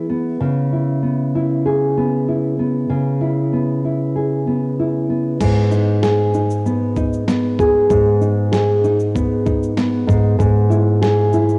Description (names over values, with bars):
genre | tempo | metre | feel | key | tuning
acoustic pop | 96 BPM | 4/4 | straight | unclear | A4 = 440 Hz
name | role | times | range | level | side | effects
nylon-string guitar | accompaniment | 0.0-11.6 s | G#2 to G#4 | -18 LUFS | equal | cassette tape
dusty soul sampler-style drum kit | drums | 5.4-11.6 s | crash cymbal, kick drum, shaker, snare drum | -27 LUFS | equal | overdrive, cassette tape
room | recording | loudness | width
moderate lush hall reverb, RT60 2.2 s | home recording on cassette | -17 LUFS | mono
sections
0.0-5.4 A section; 5.4-11.6 B section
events
none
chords
0.4 C#m7; 5.4 G#m; 10.1 E/G#